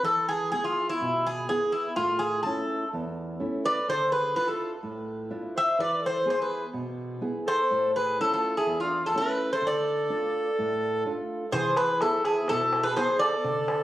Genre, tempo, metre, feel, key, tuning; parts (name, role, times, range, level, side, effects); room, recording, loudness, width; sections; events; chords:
greek folk, Greek bouzouki band; 125 BPM; 4/4; straight; A4 = 442 Hz
Greek bouzouki; melody; 0.0-13.8 s; E4 to E5; -25 LUFS; equal
nylon-string guitar; accompaniment; 0.0-13.8 s; E2 to G#4; -33 LUFS; right 1 dB
accordion; second line; 3.6-13.8 s; D4 to C5; -32 LUFS; right 1 dB
darbuka; percussion; 11.5-13.8 s; -33 LUFS; left 2 dB
light reverb; recorded on a phone in the room, studio reverb, compression, faint mains hum; -24 LUFS; side -14 dB against mid
0.0-11.5 A section; 11.5-13.8 B section
0.0 E; 2.0 A; 3.9 Dmadd9; 5.8 E; 7.7 A; 9.6 Dm; 11.5 E